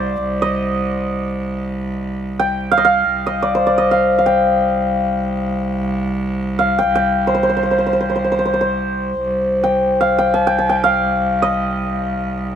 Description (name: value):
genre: Persian modal ensemble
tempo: free time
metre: none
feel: none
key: C avaz esfahan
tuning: A4 = 440 Hz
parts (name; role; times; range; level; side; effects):
- santur; melody; 0.0-12.6 s; C5 to Ab5+50c; -16 LUFS; equal; none
- clear cello; drone; 0.0-12.6 s; C2; -22 LUFS; right 2 dB; none
room: light reverb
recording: close, detailed microphones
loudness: -15 LUFS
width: side -8 dB against mid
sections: 0.0-9.2 A section; 9.2-12.6 A section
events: none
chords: none